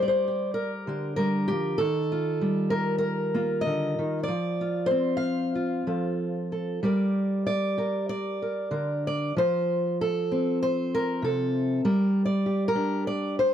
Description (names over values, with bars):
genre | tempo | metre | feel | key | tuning
folk, solo fingerstyle acoustic guitar | 97 BPM | 4/4 | rubato | unclear | A4 = 440 Hz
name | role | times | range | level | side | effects
fingerpicked steel-string acoustic guitar | solo | 0.0-13.5 s | C3 to F5 | -24 LUFS | equal | none
room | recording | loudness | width
studio reverb | dry, close 1970s-style studio recording | -24 LUFS | side -10 dB against mid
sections
0.0-6.8 A section; 6.8-13.5 B section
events
none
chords
0.0 Gm; 1.8 Ebadd9; 4.3 F; 6.8 Gm; 9.4 F; 11.8 Gm